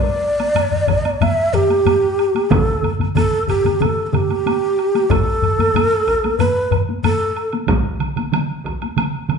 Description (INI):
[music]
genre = japanese traditional, taiko drum ensemble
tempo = 93 BPM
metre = 4/4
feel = straight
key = A suspended pentatonic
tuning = A4 = 441 Hz
[part]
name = breathy mellow shakuhachi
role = melody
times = 0.0-7.5 s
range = G4 to E5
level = -17 LUFS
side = right 1 dB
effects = none
[part]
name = taiko ensemble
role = percussion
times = 0.4-9.1 s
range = none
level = -26 LUFS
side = left 4 dB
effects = none
[part]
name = woodblock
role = percussion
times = 0.4-9.4 s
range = none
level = -28 LUFS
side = right 2 dB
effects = none
[part]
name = taiko ensemble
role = percussion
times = 0.6-7.2 s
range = none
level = -20 LUFS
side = left 3 dB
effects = none
[part]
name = taiko ensemble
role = percussion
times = 0.9-8.8 s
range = none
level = -22 LUFS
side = right 1 dB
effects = none
[part]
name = taiko ensemble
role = percussion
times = 2.5-9.4 s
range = none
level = -22 LUFS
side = right 4 dB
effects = none
[sound]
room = wet large studio reverb, RT60 1.1 s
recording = band playing live in one room, nothing above 11.0 kHz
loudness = -15 LUFS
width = side -6 dB against mid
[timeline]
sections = 0.0-9.4 A section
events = none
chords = none